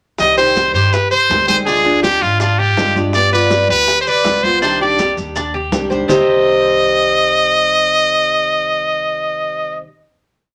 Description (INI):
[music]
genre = latin, Cuban son and guajira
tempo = 163 BPM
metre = 4/4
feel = straight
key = C harmonic minor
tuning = A4 = 440 Hz
[part]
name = brilliant trumpet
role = melody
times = 0.2-9.8 s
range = F4 to Eb5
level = -16 LUFS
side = equal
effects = none
[part]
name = picked acoustic archtop guitar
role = accompaniment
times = 0.2-9.9 s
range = C3 to G4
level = -25 LUFS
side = equal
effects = none
[part]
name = upright bass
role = bass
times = 0.2-9.8 s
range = C2 to Ab2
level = -25 LUFS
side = equal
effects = none
[part]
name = bongos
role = percussion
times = 0.2-6.2 s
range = none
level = -28 LUFS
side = equal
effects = none
[part]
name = congas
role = percussion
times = 0.2-6.2 s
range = none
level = -28 LUFS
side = equal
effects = none
[part]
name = maracas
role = percussion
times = 0.2-6.2 s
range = none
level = -34 LUFS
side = equal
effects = none
[part]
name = Cuban tres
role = arpeggios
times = 0.4-9.8 s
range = C4 to D5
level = -22 LUFS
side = equal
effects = none
[sound]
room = moderate club reverb, RT60 0.6 s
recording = none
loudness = -14 LUFS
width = mono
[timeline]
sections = 0.2-6.1 A section; 6.1-9.0 final chord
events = none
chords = 0.2 Cm; 1.7 Ddim; 3.2 G7; 4.6 Cmadd9; 6.1 Cm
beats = | 0.20 0.56 0.94 1.30 | 1.68 2.04 2.41 2.78 | 3.15 3.52 3.89 4.26 | 4.62 4.99 5.36 5.73 | 6.09 6.46 6.83 7.20 | 7.56 7.93 8.30 8.67